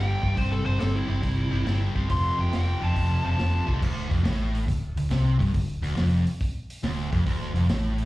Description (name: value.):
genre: blues rock power trio and southern rock.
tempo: 139 BPM.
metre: 4/4.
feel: swing 67% on 8ths.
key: D minor.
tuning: A4 = 439 Hz.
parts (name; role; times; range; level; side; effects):
fuzz lead guitar; melody; 0.0-3.7 s; E4 to C6; -31 LUFS; left 1 dB; distortion, slapback echo.
overdriven electric guitar; riff; 0.0-8.1 s; D2 to C4; -28 LUFS; equal; slapback echo.
vintage muted fingered electric bass; bass; 0.0-8.1 s; D1 to C2; -25 LUFS; equal; none.
vintage drum kit; drums; 0.2-8.0 s; crash cymbal, hi-hat, kick drum, snare drum; -30 LUFS; equal; none.
room: small room reverb.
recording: live gig heard through the venue's PA, club reverb.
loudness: -23 LUFS.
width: side -18 dB against mid.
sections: 0.0-3.8 A section; 3.8-8.1 B section.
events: none.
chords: 0.4 C/G; 2.1 F; 3.8 Dm.